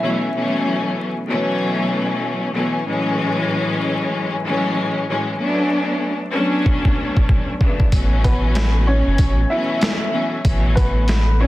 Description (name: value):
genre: hip hop, boom-bap hip-hop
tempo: 95 BPM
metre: 4/4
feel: swing 60% on 16ths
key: A major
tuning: A4 = 440 Hz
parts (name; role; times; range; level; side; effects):
- dark upright piano; melody; 0.0-0.3, 8.2-11.5 s; B3 to E5; -24 LUFS; equal; high-pass filter, low-pass filter, digital delay
- rich studio string section; accompaniment; 0.0-11.5 s; A2 to D4; -20 LUFS; left 1 dB; cassette tape, high-pass filter, low-pass filter
- boom bap sampler-style drum kit; drums; 6.7-11.3 s; hi-hat, kick drum, snare drum; -18 LUFS; equal; none
- soft dub sub bass; bass; 7.9-11.5 s; F#1 to A1; -17 LUFS; equal; none
room: digital ambience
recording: dense, heavily limited modern master, vinyl crackle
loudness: -16 LUFS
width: side -16 dB against mid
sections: 0.0-11.5 A section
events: drum fill 6.7-7.9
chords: 0.0 A69; 2.9 F#m9; 5.4 Bm9; 7.9 A69